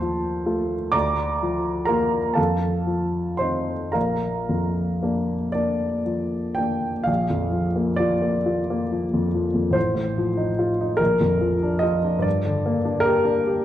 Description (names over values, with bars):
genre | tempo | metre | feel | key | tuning
classical, romantic nocturne for solo piano | 36-49 BPM (dotted quarters) | 6/8 | rubato | Bb major | A4 = 439 Hz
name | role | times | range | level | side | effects
warm baby grand piano | solo | 0.0-13.6 s | A1 to D6 | -20 LUFS | equal | none
room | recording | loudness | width
wet recital hall reverb, RT60 1.5 s | dark, warm production | -20 LUFS | side -12 dB against mid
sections
0.0-7.1 A section; 7.1-13.6 B section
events
none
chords
0.0 F7/Eb; 0.9 Bb/D; 2.4 F7; 3.9 Bb; 9.8 F7/A; 11.0 Bb; 12.3 Gm